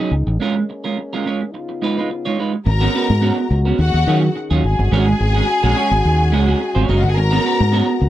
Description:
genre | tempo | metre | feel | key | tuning
disco | 106 BPM | 4/4 | straight | unclear | A4 = 440 Hz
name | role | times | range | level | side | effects
semi-hollow electric guitar | accompaniment | 0.0-8.0 s | F#3 to Db5 | -20 LUFS | right 5 dB | none
dark French horn section | sustained chords | 0.0-8.1 s | Db3 to Ab4 | -25 LUFS | left 3 dB | none
fingered electric bass | bass | 0.1-8.1 s | Gb1 to Eb3 | -16 LUFS | equal | none
clear studio string section | second line | 2.7-8.0 s | Eb4 to Bb5 | -21 LUFS | left 2 dB | none
room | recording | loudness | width
little or no reverb | dry, close 1970s-style studio recording | -15 LUFS | side -13 dB against mid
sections
0.0-2.7 A section; 2.7-8.1 B section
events
break 0.4-2.7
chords
0.4 Bbm7; 1.5 Db9; 2.7 Abm11; 3.8 Ebm11; 4.6 Ab9sus4; 7.2 Abm11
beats
| 0.40 0.96 1.53 2.09 | 2.66 3.22 3.78 4.35 | 4.91 5.47 6.04 6.60 | 7.16 7.73

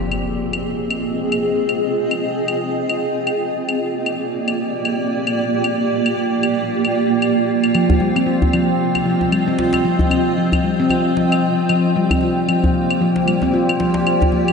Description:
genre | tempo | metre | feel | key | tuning
organic downtempo | 114 BPM | 4/4 | swing 58% on 16ths | F dorian | A4 = 440 Hz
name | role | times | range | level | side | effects
granular cloud pad | sustained chords | 0.0-14.5 s | Bb3 to G5 | -19 LUFS | right 2 dB | built-in reverb
impact | sound effects | 0.0-1.4 s | none | -31 LUFS | equal | none
claves | drums | 0.1-14.5 s | none | -26 LUFS | left 4 dB | none
handpan | arpeggios | 7.7-14.5 s | F3 to F4 | -18 LUFS | left 2 dB | ping-pong delay
djembe | percussion | 7.9-14.4 s | none | -22 LUFS | equal | none
room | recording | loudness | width
wet lush hall reverb, RT60 2.0 s | dreamy mix soaked in reverb, nothing above 10.5 kHz | -16 LUFS | side -5 dB against mid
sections
0.0-14.5 A section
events
impact 0.0-1.4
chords
0.0 Fm9; 3.5 Gm7; 7.7 Fsus2; 12.0 Gm7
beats
0.38 0.90 | 1.43 1.96 2.48 3.01 | 3.54 4.06 4.59 5.11 | 5.64 6.17 6.69 7.22 | 7.75 8.27 8.80 9.32 | 9.85 10.38 10.90 11.43 | 11.96 12.48 13.01 13.54 | 14.06

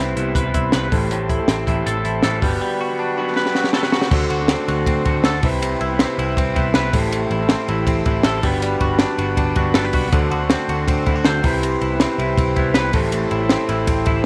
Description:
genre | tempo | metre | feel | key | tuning
jangly indie pop | 160 BPM | 4/4 | straight | G major | A4 = 440 Hz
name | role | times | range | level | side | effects
electric guitar through a small old amp | accompaniment | 0.0-14.3 s | G2 to F#4 | -30 LUFS | equal | none
overdriven combo organ | accompaniment | 0.0-14.3 s | D4 to C5 | -26 LUFS | equal | none
direct-recorded clean electric guitar | arpeggios | 0.0-14.3 s | A2 to C5 | -26 LUFS | equal | analog chorus
vintage muted picked electric bass | bass | 0.0-14.2 s | G1 to D2 | -26 LUFS | equal | none
compact cocktail drum kit | drums | 0.2-14.2 s | crash cymbal, hi-hat, kick drum, ride cymbal, snare drum | -22 LUFS | equal | none
room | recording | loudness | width
light reverb, small room ambience | none | -19 LUFS | mono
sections
0.0-4.1 A section; 4.1-14.3 B section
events
drum fill 3.4-4.1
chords
0.0 Cmaj7; 0.9 Am7; 2.4 Gmaj7; 4.1 D7; 5.4 Cmaj7; 6.9 Am7; 8.4 Gmaj7; 10.1 D7; 11.4 Cmaj7; 12.9 Am7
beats
0.35 0.73 | 1.11 1.48 1.86 2.23 | 2.61 2.99 3.36 3.74 | 4.12 4.49 4.87 5.24 | 5.62 5.99 6.37 6.74 | 7.12 7.50 7.87 8.25 | 8.62 9.00 9.37 9.75 | 10.12 10.50 10.88 11.25 | 11.63 12.00 12.38 12.75 | 13.13 13.50 13.88 14.26

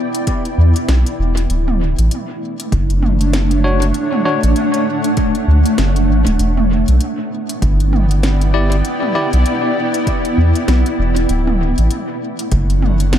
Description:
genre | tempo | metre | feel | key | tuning
ambient dub | 98 BPM | 4/4 | swing 58% on 16ths | E dorian | A4 = 440 Hz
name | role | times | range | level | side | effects
granular cloud pad | sustained chords | 0.0-13.2 s | A3 to G5 | -18 LUFS | equal | built-in reverb
organic electronic drum kit | drums | 0.1-13.2 s | hi-hat, snare drum, toms | -24 LUFS | right 1 dB | overdrive, studio reverb, dub echo
electronic kick drum | drums | 0.3-12.7 s | none | -20 LUFS | equal | overdrive, studio reverb
soft dub sub bass | bass | 0.6-13.2 s | D1 to E2 | -14 LUFS | equal | none
bell-like tine electric piano | stabs | 3.6-4.4, 8.5-9.3 s | D4 to D5 | -23 LUFS | left 3 dB | medium stereo tremolo, low-pass filter, dub echo
room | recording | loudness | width
light reverb, digital ambience | echo-heavy mix | -13 LUFS | side -10 dB against mid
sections
0.0-13.2 A section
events
filter sweep on tine electric piano 0.0-13.2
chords
0.0 Em7; 1.5 Dmaj7; 6.4 Em7; 11.3 Dmaj7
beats
0.28 0.89 | 1.50 2.11 2.72 3.34 | 3.95 4.56 5.17 5.79 | 6.40 7.01 7.62 8.23 | 8.85 9.46 10.07 10.68 | 11.29 11.91 12.52 13.13

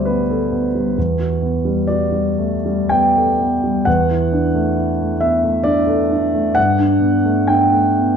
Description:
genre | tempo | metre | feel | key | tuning
classical, impressionist solo piano | 56-70 BPM | 3/4 | rubato | D major | A4 = 442 Hz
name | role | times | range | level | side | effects
clear concert grand piano | solo | 0.0-8.2 s | D2 to G5 | -14 LUFS | equal | none
room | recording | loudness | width
moderate recital hall reverb, RT60 1.4 s | dark, warm production | -14 LUFS | side -7 dB against mid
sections
0.0-8.2 A section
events
none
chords
0.0 Gmaj9/D; 1.0 Em11; 3.9 Dadd9/E; 6.6 Gadd9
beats
0.06 | 0.96 1.88 2.90 | 3.86 4.78 5.65 | 6.57 7.48

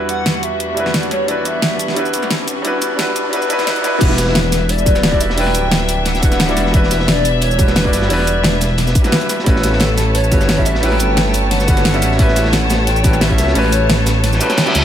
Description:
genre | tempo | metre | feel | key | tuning
liquid drum and bass | 176 BPM | 4/4 | straight | E dorian | A4 = 440 Hz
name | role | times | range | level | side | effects
hollow clarinet-like synth lead | melody | 0.0-14.2 s | A4 to G5 | -22 LUFS | left 1 dB | lush chorus, ping-pong delay
warm grand piano | accompaniment | 0.0-14.8 s | F#3 to E5 | -20 LUFS | equal | dub echo
dark chamber string section | sustained chords | 0.0-14.8 s | E2 to A5 | -22 LUFS | equal | sidechain pumping, low-pass filter
riser and reverse cymbal | sound effects | 0.7-4.0, 14.3-14.8 s | none | -24 LUFS | equal | none
pop drum kit | drums | 0.1-14.8 s | crash cymbal, hi-hat, shaker, snare drum | -19 LUFS | equal | none
dark detuned saw bass | bass | 4.0-14.8 s | D1 to C#2 | -17 LUFS | equal | none
crunchy breakbeat drum kit | drums | 4.0-14.8 s | hi-hat, snare drum | -24 LUFS | equal | high-pass filter on hats, high-pass filter on snare, high-pass filter on room
electronic kick drum | drums | 4.0-13.4 s | none | -14 LUFS | equal | none
room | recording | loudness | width
small room ambience | high-pass filter | -12 LUFS | side -10 dB against mid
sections
0.0-4.0 A section; 4.0-14.8 B section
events
build-up 0.0-4.0; riser 0.7-4.0; drop 4.0-14.8; kick drops out 14.2-14.8; reverse cymbal 14.3-14.8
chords
0.0 Em9; 9.5 A13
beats
0.26 0.60 0.94 | 1.28 1.62 1.97 2.31 | 2.65 2.99 3.33 3.67 | 4.01 4.35 4.69 5.03 | 5.38 5.72 6.06 6.40 | 6.74 7.08 7.42 7.76 | 8.10 8.44 8.78 9.12 | 9.47 9.81 10.15 10.49 | 10.83 11.17 11.51 11.85 | 12.19 12.53 12.88 13.22 | 13.56 13.90 14.24 14.58

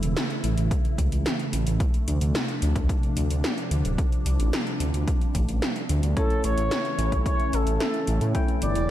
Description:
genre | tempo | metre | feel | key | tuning
synthwave | 110 BPM | 4/4 | straight | unclear | A4 = 440 Hz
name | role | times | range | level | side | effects
phased analog pad | sustained chords | 0.0-8.9 s | C3 to E4 | -31 LUFS | right 1 dB | phaser, chorus, sidechain pumping
dark detuned saw bass | bass | 0.0-8.9 s | D1 to A2 | -24 LUFS | equal | sidechain pumping
80s electronic pad drums | drums | 0.0-8.9 s | hi-hat, snare drum | -31 LUFS | equal | slapback echo
electronic kick drum | drums | 0.7-8.5 s | none | -25 LUFS | equal | none
expressive synth lead | melody | 6.2-8.9 s | A4 to D5 | -28 LUFS | equal | chorus, cassette tape, tape echo, slapback echo
tine electric piano | stabs | 6.2-8.9 s | A3 to G5 | -31 LUFS | left 4 dB | slapback echo
room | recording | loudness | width
light reverb | none | -22 LUFS | side -12 dB against mid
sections
0.0-8.9 A section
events
none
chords
0.0 A; 1.8 Dm7; 6.2 A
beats
0.17 0.71 1.26 | 1.80 2.35 2.89 3.44 | 3.98 4.53 5.08 5.62 | 6.17 6.71 7.26 7.80 | 8.35 8.89

